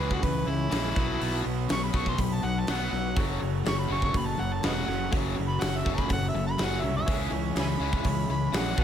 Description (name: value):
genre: classic rock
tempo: 123 BPM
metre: 4/4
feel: straight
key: F# minor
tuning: A4 = 441 Hz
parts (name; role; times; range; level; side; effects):
- overdriven harmonica; melody; 0.0-8.8 s; E4 to C#6; -32 LUFS; equal; none
- tonewheel organ; sustained chords; 0.0-8.8 s; E4 to C#5; -43 LUFS; right 1 dB; none
- distorted electric guitar; riff; 0.0-8.8 s; F#2 to B3; -32 LUFS; left 10 dB; overdrive
- raw garage guitar; riff; 0.0-8.8 s; F#2 to C#4; -35 LUFS; right 13 dB; overdrive
- fuzz fingered electric bass; bass; 0.0-8.8 s; E1 to C#2; -31 LUFS; right 1 dB; overdrive
- big rock drum kit; drums; 0.1-8.8 s; hi-hat, kick drum, snare drum; -31 LUFS; equal; none
- honky-tonk upright piano; accompaniment; 3.2-8.8 s; E4 to C#5; -41 LUFS; left 2 dB; none
room: little or no reverb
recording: none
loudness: -25 LUFS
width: side -9 dB against mid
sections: 0.0-8.8 A section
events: harmonica solo 0.0-8.8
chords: 0.0 C#m; 1.0 Bsus2; 3.2 F#m; 7.1 C#m